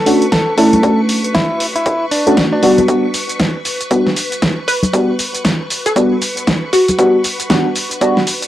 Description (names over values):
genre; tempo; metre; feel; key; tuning
deep house; 117 BPM; 4/4; swing 60% on 16ths; unclear; A4 = 443 Hz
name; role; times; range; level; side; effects
direct-recorded clean electric guitar; melody; 0.0-2.8 s; D4 to A4; -18 LUFS; equal; vintage 12-bit sampler grit, cassette tape, analog delay
round analog bass; bass; 0.0-8.4 s; none; barely audible; none; none
string machine, violins; texture; 0.0-8.5 s; B4 to C#6; -26 LUFS; equal; ensemble chorus, sidechain pumping, cassette tape
deep mellow chord stab; stabs; 0.1-8.2 s; G3 to F#4; -14 LUFS; equal; chorus, sidechain pumping, cassette tape
deep house drum kit; drums; 0.1-8.5 s; hi-hat, shaker, snare drum; -17 LUFS; equal; cassette tape
electronic kick drum; drums; 0.3-8.1 s; none; -21 LUFS; equal; high-pass filter on kick, cassette tape
congas; percussion; 0.7-7.0 s; none; -17 LUFS; left 2 dB; sidechain pumping on perc
hollow square pluck; melody; 4.7-7.1 s; F#4 to B4; -16 LUFS; equal; analog chorus, cassette tape, analog delay
room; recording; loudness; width
wet booth ambience, RT60 0.3 s; home recording on cassette; -12 LUFS; side -13 dB against mid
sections
0.0-8.5 A section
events
build-up 0.0-8.5; filter sweep on synth stab 0.0-8.5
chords
0.0 Bm9; 2.6 Em9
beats
0.32 | 0.83 1.34 1.86 2.37 | 2.88 3.40 3.91 4.42 | 4.93 5.45 5.96 6.47 | 6.99 7.50 8.01